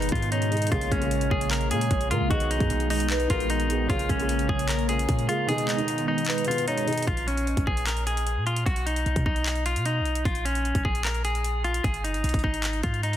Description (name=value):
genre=hip hop, trap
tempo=151 BPM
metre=4/4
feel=half-time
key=Bb phrygian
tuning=A4 = 440 Hz
part: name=clean electric guitar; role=melody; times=0.0-13.2 s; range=Db4 to Bb4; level=-28 LUFS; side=left 1 dB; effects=spring reverb, low-pass filter, ping-pong delay
part: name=soft octave-layered synth lead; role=second line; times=0.0-7.1 s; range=Cb5 to F5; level=-33 LUFS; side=left 2 dB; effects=chorus, phaser, ping-pong delay
part: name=dark grand piano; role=accompaniment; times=0.0-7.1 s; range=Cb3 to Bb4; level=-31 LUFS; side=right 2 dB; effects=low-pass filter
part: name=hollow soft pad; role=sustained chords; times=0.0-7.1 s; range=Db3 to Cb4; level=-32 LUFS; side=right 1 dB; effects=ensemble chorus
part: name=warm 808-style bass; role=bass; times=0.0-13.2 s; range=Gb1 to B2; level=-28 LUFS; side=equal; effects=none
part: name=trap drum kit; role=drums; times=0.0-13.2 s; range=handclaps, hi-hat, kick drum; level=-29 LUFS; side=equal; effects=none
room=digital ambience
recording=dense, heavily limited modern master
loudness=-23 LUFS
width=side -11 dB against mid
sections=0.0-7.1 A section; 7.1-13.2 B section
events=kick muted 5.5-7.1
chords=0.0 Abm; 0.7 Bbm7; 2.3 B6; 3.9 Bbm7; 5.5 Abm; 7.1 Bbm7; 8.7 B; 10.3 Bbm7; 11.8 Ab5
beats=0.32 | 0.72 1.11 1.51 1.91 | 2.31 2.70 3.10 3.50 | 3.90 4.29 4.69 5.09 | 5.49 5.88 6.28 6.68 | 7.07 7.47 7.87 8.27 | 8.66 9.06 9.46 9.86 | 10.25 10.65 11.05 11.45 | 11.84 12.24 12.64 13.04